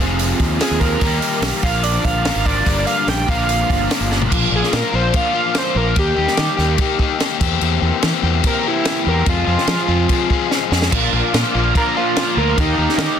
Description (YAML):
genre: indie rock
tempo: 145 BPM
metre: 4/4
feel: straight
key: unclear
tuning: A4 = 440 Hz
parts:
  - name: overdriven electric guitar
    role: riff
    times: 0.0-13.2 s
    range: F2 to Bb4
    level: -21 LUFS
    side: left 12 dB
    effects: none
  - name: raw garage guitar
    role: riff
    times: 0.0-4.3, 10.9-13.2 s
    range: F2 to G4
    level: -23 LUFS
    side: right 8 dB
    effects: overdrive, ensemble chorus, slapback echo
  - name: growling fingered electric bass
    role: bass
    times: 0.0-13.1 s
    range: F1 to F3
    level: -20 LUFS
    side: equal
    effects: overdrive
  - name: compact cocktail drum kit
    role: drums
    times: 0.2-13.1 s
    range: crash cymbal, hi-hat, kick drum, snare drum, toms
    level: -20 LUFS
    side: equal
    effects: soft clipping on snare
  - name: overdriven synth lead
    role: melody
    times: 0.6-13.2 s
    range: Eb4 to G5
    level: -21 LUFS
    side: right 3 dB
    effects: distortion, chorus, slapback echo
  - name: mellow tonewheel organ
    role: sustained chords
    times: 4.3-13.2 s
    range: Ab4 to D6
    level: -30 LUFS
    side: equal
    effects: chorus vibrato, slow rotary speaker
room: studio reverb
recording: dense, heavily limited modern master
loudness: -15 LUFS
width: side -8 dB against mid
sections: 0.0-4.3 A section; 4.3-13.2 B section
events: drum fill 4.1, 10.5-10.9; analog synth lead solo 4.3-13.2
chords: 0.0 Fm7; 1.0 Eb; 1.6 Bb; 2.7 Gm; 3.3 Bb; 6.0 Ebmaj7; 7.4 C7/E; 9.3 Fm7; 10.9 Bb; 12.6 Ebmaj7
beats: 0.19 0.60 | 1.01 1.43 1.84 2.25 | 2.67 3.08 3.49 3.90 | 4.32 4.73 5.14 5.55 | 5.97 6.38 6.79 7.20 | 7.62 8.03 8.44 8.85 | 9.27 9.68 10.09 10.51 | 10.92 11.33 11.74 12.15 | 12.57 12.98